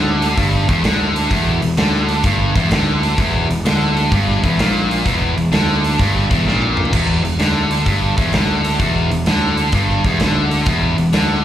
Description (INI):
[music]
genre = blues rock power trio and southern rock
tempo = 128 BPM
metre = 4/4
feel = swing 67% on 8ths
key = E minor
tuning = A4 = 440 Hz
[part]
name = distorted electric guitar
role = riff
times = 0.0-11.4 s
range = E2 to D3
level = -17 LUFS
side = equal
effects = overdrive, slapback echo
[part]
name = fuzz picked electric bass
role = bass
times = 0.0-11.4 s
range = E1 to D2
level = -18 LUFS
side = equal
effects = overdrive
[part]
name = big rock drum kit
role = drums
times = 0.2-11.3 s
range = crash cymbal, hi-hat, kick drum, snare drum, toms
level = -20 LUFS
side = equal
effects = none
[sound]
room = small room reverb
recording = live gig heard through the venue's PA, club reverb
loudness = -14 LUFS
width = side -11 dB against mid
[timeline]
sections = 0.0-6.9 A section; 6.9-11.4 B section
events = drum fill 6.5-6.9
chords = 0.0 Em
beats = 0.36 0.83 | 1.30 1.77 2.24 2.71 | 3.18 3.65 4.12 4.58 | 5.05 5.52 5.99 6.46 | 6.92 7.39 7.86 8.33 | 8.80 9.27 9.73 10.20 | 10.67 11.14